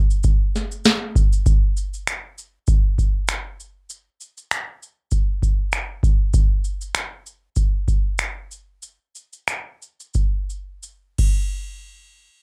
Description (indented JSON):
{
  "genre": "pop",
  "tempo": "83-99 BPM",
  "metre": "4/4",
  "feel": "swing 55% on 16ths",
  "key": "none",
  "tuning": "none",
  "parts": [
    { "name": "booming analog drum machine", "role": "drums", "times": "0.1-11.4 s", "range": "crash cymbal, finger snaps, kick drum, shaker, snare drum", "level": "-21 LUFS", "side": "equal", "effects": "none" }
  ],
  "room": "little or no reverb",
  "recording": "none",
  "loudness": "-21 LUFS",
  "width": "mono",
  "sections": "0.0-1.5 A section; 1.5-11.6 B section",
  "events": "slowing down 6.3-11.6; drum fill 10.2-11.6",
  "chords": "none"
}